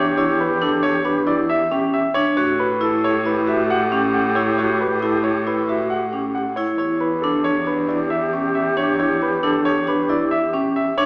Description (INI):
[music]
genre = classical, minimalist pattern music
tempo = 136 BPM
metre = 5/4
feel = straight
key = E dorian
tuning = A4 = 440 Hz
[part]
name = warm concert grand piano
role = melody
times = 0.0-11.1 s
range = G4 to F#5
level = -24 LUFS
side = equal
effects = none
[part]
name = bright alto flute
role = second line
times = 0.0-10.9 s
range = G4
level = -27 LUFS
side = equal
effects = none
[part]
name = vibraphone with medium mallets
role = arpeggios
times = 0.0-11.1 s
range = C#4 to F#4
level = -24 LUFS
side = equal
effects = none
[part]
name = rich cello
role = bass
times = 0.0-11.1 s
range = E2 to A2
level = -30 LUFS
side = equal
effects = none
[sound]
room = moderate recital hall reverb, RT60 1.4 s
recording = vinyl crackle, small speaker sound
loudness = -20 LUFS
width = mono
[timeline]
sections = 0.0-11.1 A section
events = none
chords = 0.0 Em7; 2.4 A9; 6.8 Em7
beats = | 0.17 0.61 1.05 1.50 1.94 | 2.38 2.82 3.26 3.70 4.14 | 4.58 5.03 5.47 5.91 6.35 | 6.79 7.23 7.67 8.11 8.55 | 9.00 9.44 9.88 10.32 10.76